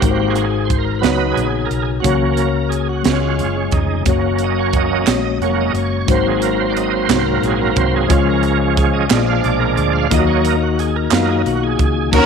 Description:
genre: slow gospel.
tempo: 60 BPM (dotted quarters).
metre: 6/8.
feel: straight.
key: F# major.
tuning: A4 = 440 Hz.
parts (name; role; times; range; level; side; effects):
mellow tine electric piano; accompaniment; 0.0-12.3 s; G#2 to E#5; -19 LUFS; left 11 dB; medium stereo tremolo.
bright tonewheel organ; sustained chords; 0.0-12.3 s; E#3 to E#5; -19 LUFS; right 8 dB; slow rotary speaker, overdrive, chorus vibrato.
hollow-body short-scale fingered electric bass; bass; 0.0-12.3 s; E#1 to F#2; -21 LUFS; equal; none.
crisp fusion drum kit; drums; 0.0-12.3 s; crash cymbal, hi-hat, kick drum, snare drum; -20 LUFS; right 3 dB; none.
group handclap; percussion; 5.1-11.4 s; none; -25 LUFS; right 12 dB; none.
rich studio string section; melody; 12.1-12.3 s; C#4 to A#4; -13 LUFS; right 1 dB; none.
room: moderate plate reverb, RT60 1.6 s, small room ambience.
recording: 1960s-style stereo with parts hard left and right.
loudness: -14 LUFS.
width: side -6 dB against mid.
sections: 0.0-12.1 A section.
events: tonewheel organ solo 0.0-12.1.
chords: 0.0 G#7; 1.0 C#9sus4; 2.0 F#/C#; 3.1 C#; 4.1 F#; 6.1 G#7; 8.1 C#; 9.1 A#7; 10.1 D#m.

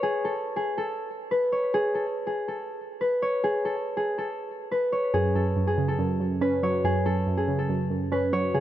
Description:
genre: hip hop.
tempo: 141 BPM.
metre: 4/4.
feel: half-time.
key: F# minor.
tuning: A4 = 441 Hz.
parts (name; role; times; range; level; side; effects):
concert harp; melody; 0.0-8.6 s; G#4 to C#5; -26 LUFS; left 1 dB; low-pass filter, ping-pong delay.
warbly dusty pluck; accompaniment; 5.1-8.6 s; F#2 to C#4; -25 LUFS; right 2 dB; chorus, low-pass filter.
room: light reverb, studio reverb.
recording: none.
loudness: -24 LUFS.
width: side -12 dB against mid.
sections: 0.0-5.1 A section; 5.1-8.6 B section.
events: none.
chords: 0.0 N.C.; 5.1 F#m.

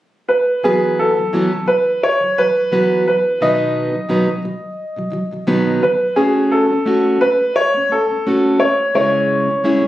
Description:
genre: acoustic pop.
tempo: 87 BPM.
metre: 4/4.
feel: swing 55% on 16ths.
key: E major.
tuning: A4 = 440 Hz.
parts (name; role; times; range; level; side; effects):
clear upright piano; melody; 0.3-9.9 s; G#4 to D#5; -16 LUFS; equal; none.
fingerpicked plugged-in steel-string acoustic guitar; accompaniment; 0.6-9.9 s; B2 to B4; -17 LUFS; equal; none.
room: light reverb.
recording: recorded on a phone in the room, studio reverb, compression.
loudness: -14 LUFS.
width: side -14 dB against mid.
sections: 0.6-9.9 A section.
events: none.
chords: 0.0 N.C.; 0.6 Esus2; 3.4 B; 6.2 F#m/A; 8.9 C#m.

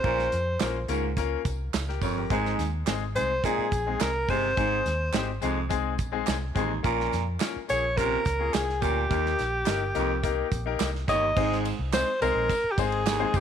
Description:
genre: uptempo 1960s-style soul.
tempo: 106 BPM.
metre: 4/4.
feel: straight.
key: Ab major.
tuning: A4 = 440 Hz.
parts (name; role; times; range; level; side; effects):
breathy alto saxophone; melody; 0.0-13.4 s; G4 to Eb5; -27 LUFS; equal; none.
bright grand piano; accompaniment; 0.0-13.4 s; Ab3 to Db5; -31 LUFS; left 12 dB; none.
breathy baritone saxophone; riff; 0.0-13.4 s; Eb2 to C3; -32 LUFS; right 13 dB; none.
vintage muted fingered electric bass; bass; 0.0-13.4 s; Gb1 to F2; -31 LUFS; equal; none.
natural country drum kit; drums; 0.0-13.4 s; crash cymbal, hi-hat, kick drum, ride cymbal, snare drum; -31 LUFS; right 4 dB; none.
tambourine and handclaps; percussion; 0.3-13.4 s; none; -40 LUFS; right 4 dB; none.
room: light reverb, studio reverb.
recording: 1960s-style stereo with parts hard left and right.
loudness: -24 LUFS.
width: side -8 dB against mid.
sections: 0.0-11.4 A section; 11.4-13.4 B section.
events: none.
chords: 0.0 Bbm; 2.3 Ab; 6.8 Bbm; 9.1 Eb; 11.4 Ab.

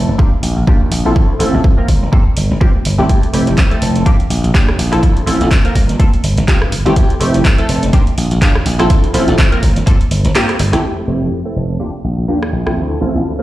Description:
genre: filtered disco house.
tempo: 124 BPM.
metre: 4/4.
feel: swing 57% on 16ths.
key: F major.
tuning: A4 = 440 Hz.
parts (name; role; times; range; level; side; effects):
funky polysynth comp; accompaniment; 0.0-13.4 s; A3 to Bb4; -17 LUFS; equal; chorus, phaser, sidechain pumping, low-pass filter.
glassy slap bass; bass; 0.0-13.3 s; F1 to G2; -16 LUFS; equal; sidechain pumping, low-pass filter.
electronic kick drum; drums; 0.2-10.0 s; none; -11 LUFS; equal; none.
punchy analog drum machine; drums; 0.4-12.8 s; handclaps, hi-hat, rim click; -21 LUFS; equal; sidechain pumping on hats.
room: light reverb, digital ambience.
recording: played on a big sound system in a bare room, large studio reverb.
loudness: -11 LUFS.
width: side -15 dB against mid.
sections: 0.0-10.8 A section; 10.8-13.4 B section.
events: filter sweep 0.0-10.8, 10.8-13.4; kick drops out 10.4-10.8; band accent 10.4.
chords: 0.2 Ebmaj9; 1.2 Dm7; 1.9 Gm11; 3.1 Fmaj7; 4.1 Ebmaj9; 5.0 Dm7; 5.8 Gm11; 7.0 Fmaj7; 7.9 Ebmaj9; 8.9 Dm7; 9.6 Gm11; 10.8 Fmaj7; 11.8 Ebmaj9; 12.8 Dm7.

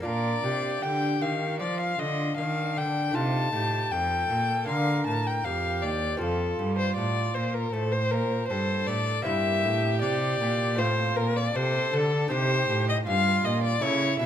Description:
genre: classical, baroque-style sonata movement with continuo.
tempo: 79 BPM.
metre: 4/4.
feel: straight.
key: Bb major.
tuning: A4 = 440 Hz.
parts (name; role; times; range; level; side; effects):
rich violin; melody; 0.0-14.3 s; A4 to A5; -27 LUFS; left 5 dB; none.
warm violin; second line; 0.0-14.3 s; D4 to C5; -33 LUFS; right 9 dB; none.
lute; accompaniment; 0.0-14.3 s; Eb2 to A4; -34 LUFS; equal; none.
rich cello; bass; 0.0-14.3 s; Eb2 to F3; -29 LUFS; right 1 dB; none.
room: moderate recital hall reverb, RT60 1.7 s.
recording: close, detailed microphones.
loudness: -24 LUFS.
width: side -10 dB against mid.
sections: 0.1-14.3 A section.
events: none.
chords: 0.1 Bb; 3.2 F7; 4.7 Bb; 6.2 F; 9.3 C7/G; 10.8 F/A; 12.3 Cm.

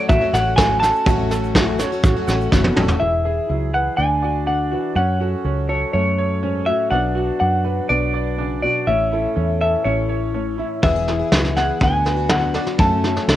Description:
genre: indie folk with a building arrangement.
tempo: 123 BPM.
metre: 4/4.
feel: straight.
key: A major.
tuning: A4 = 440 Hz.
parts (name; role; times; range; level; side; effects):
semi-hollow electric guitar; melody; 0.0-13.4 s; C#5 to A5; -21 LUFS; left 1 dB; harmonic tremolo, cassette tape, tape echo.
picked plugged-in twelve-string acoustic guitar; accompaniment; 0.0-3.0, 10.8-13.4 s; F#2 to G#4; -25 LUFS; left 9 dB; none.
bright upright piano; arpeggios; 0.0-13.4 s; A3 to F#5; -26 LUFS; right 9 dB; none.
fingered electric bass; bass; 0.1-13.4 s; E1 to F#2; -22 LUFS; equal; none.
soft brush drum kit; drums; 0.1-3.0, 10.8-13.4 s; kick drum, snare drum, toms; -18 LUFS; equal; cassette tape.
tube shaker; percussion; 0.1-3.0 s; none; -42 LUFS; right 10 dB; none.
fingerpicked old ladder-braced acoustic guitar; accompaniment; 3.0-13.4 s; F#2 to A4; -27 LUFS; left 9 dB; none.
room: light reverb.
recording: home recording on cassette.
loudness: -16 LUFS.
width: side -13 dB against mid.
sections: 0.0-3.0 A section; 3.0-13.4 B section.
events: drum fill 2.5-3.0.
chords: 0.0 A6; 3.0 E; 4.0 Dadd9; 5.0 F#m; 6.9 Bm; 8.9 A; 10.8 E; 11.8 Bm/D; 12.8 F#m.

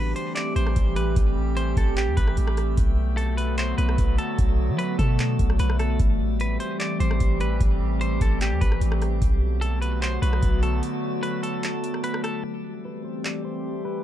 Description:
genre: hip hop, atmospheric cloud-rap.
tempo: 149 BPM.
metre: 4/4.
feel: half-time.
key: A dorian.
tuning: A4 = 440 Hz.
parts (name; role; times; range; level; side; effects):
semi-hollow electric guitar; melody; 0.0-14.0 s; G4 to D5; -32 LUFS; equal; spring reverb, low-pass filter, digital delay.
warbly tape-like pad; sustained chords; 0.0-14.0 s; D3 to G4; -28 LUFS; equal; chorus, built-in reverb, sidechain pumping, low-pass filter.
warm 808-style bass; bass; 0.0-10.8 s; A1 to F#3; -23 LUFS; equal; none.
drifting glass-harmonics texture; texture; 0.0-14.0 s; A3 to G5; -40 LUFS; equal; chorus, built-in reverb.
booming analog drum machine; drums; 0.2-13.3 s; handclaps, hi-hat, kick drum, rim click; -24 LUFS; equal; overdrive.
room: little or no reverb.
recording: dark, warm production.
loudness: -21 LUFS.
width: side -12 dB against mid.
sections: 0.0-12.4 A section; 12.4-14.0 B section.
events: break 10.8-12.4; filter sweep 12.4-14.0.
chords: 0.0 Am7; 2.8 Bm7; 6.0 Am7; 9.2 Bm7; 12.4 Am7.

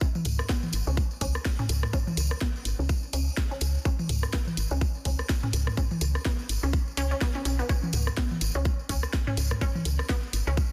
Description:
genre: minimal techno.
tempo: 125 BPM.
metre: 4/4.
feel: swing 58% on 16ths.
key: unclear.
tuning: A4 = 438 Hz.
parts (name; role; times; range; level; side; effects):
resonant blip pluck; riff; 0.0-10.5 s; B3 to C#4; -39 LUFS; equal; lush chorus, sidechain pumping, digital delay.
electronic kick drum; drums; 0.0-10.7 s; none; -30 LUFS; equal; studio ambience.
tambourine; percussion; 0.0-10.7 s; none; -41 LUFS; equal; none.
booming analog drum machine; percussion; 0.2-10.1 s; rim click, toms; -35 LUFS; equal; studio ambience, soft clipping on snare, digital delay.
woody FM bass; bass; 0.3-10.6 s; G#1 to C#2; -30 LUFS; equal; sidechain pumping.
garage drum kit; drums; 0.3-10.4 s; hi-hat, snare drum; -38 LUFS; equal; studio ambience.
room: little or no reverb.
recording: dense, heavily limited modern master.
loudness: -28 LUFS.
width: mono.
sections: 0.0-10.7 A section.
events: filter sweep on synth pluck 0.0-10.7.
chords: none.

